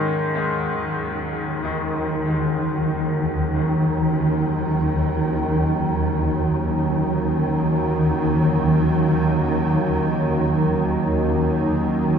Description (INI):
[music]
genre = dark ambient drone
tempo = free time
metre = none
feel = none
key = unclear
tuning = A4 = 440 Hz
[part]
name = sweeping resonant pad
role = sustained chords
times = 0.0-12.2 s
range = Gb3 to Eb4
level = -26 LUFS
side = right 1 dB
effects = chorus
[part]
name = bright baby grand piano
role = arpeggios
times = 0.0-12.2 s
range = Ab2 to Eb3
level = -28 LUFS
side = left 2 dB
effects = diffuse ambient delay
[part]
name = swarming drone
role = drone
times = 0.6-12.2 s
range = Eb2 to Eb3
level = -20 LUFS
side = equal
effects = built-in reverb
[sound]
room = wet huge ambient reverb, RT60 8.7 s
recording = dreamy mix soaked in reverb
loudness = -19 LUFS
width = side -7 dB against mid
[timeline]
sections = 0.0-12.2 A section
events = fade-in on analog synth pad 0.0-12.2; fade-out on grand piano 0.0-12.2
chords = 0.0 Ebm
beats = free time